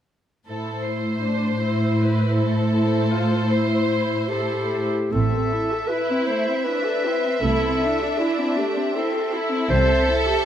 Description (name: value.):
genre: classical.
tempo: 78 BPM.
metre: 3/4.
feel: uneven beats, rubato.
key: A minor.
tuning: A4 = 440 Hz.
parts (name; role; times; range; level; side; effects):
warm symphonic violin section; melody; 0.5-10.4 s; A4 to E5; -29 LUFS; left 3 dB; none.
rich symphonic violin section; second line; 0.5-10.4 s; C4 to C5; -27 LUFS; equal; none.
dark symphonic viola section; accompaniment; 0.5-10.4 s; G3 to A4; -26 LUFS; right 1 dB; none.
warm symphonic cello section; bass; 0.5-10.3 s; A2 to C3; -23 LUFS; right 1 dB; none.
warm clarinet; second line; 3.9-10.2 s; E4 to C5; -24 LUFS; left 2 dB; none.
warm symphonic double bass section; bass; 5.1-10.3 s; A1 to C2; -24 LUFS; right 2 dB; none.
room: moderate scoring stage reverb, RT60 1.8 s.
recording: close, detailed microphones.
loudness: -19 LUFS.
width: side -10 dB against mid.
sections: 0.5-5.1 A section; 5.1-10.4 B section.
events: none.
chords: 0.5 Am; 7.4 Am/C; 9.7 C.